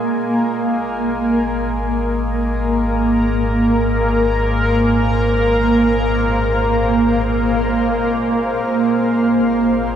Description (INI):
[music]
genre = ambient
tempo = free time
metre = none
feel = none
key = Ab major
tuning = A4 = 440 Hz
[part]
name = granular cloud pad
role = sustained chords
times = 0.0-10.0 s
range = Bb3 to Ab5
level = -16 LUFS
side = right 1 dB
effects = built-in reverb
[part]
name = deep rumbling drone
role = bass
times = 1.2-10.0 s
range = Ab1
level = -22 LUFS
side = left 1 dB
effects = built-in reverb
[part]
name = hand-pumped harmonium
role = drone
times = 0.0-10.0 s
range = Ab3 to Ab4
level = -30 LUFS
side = left 1 dB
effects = none
[sound]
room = wet lush hall reverb, RT60 3.0 s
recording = dark, warm production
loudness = -15 LUFS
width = side -9 dB against mid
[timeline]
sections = 0.0-10.0 A section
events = fade-out on harmonium 0.0-10.0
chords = 0.0 Ab6; 8.6 Bbm7/Ab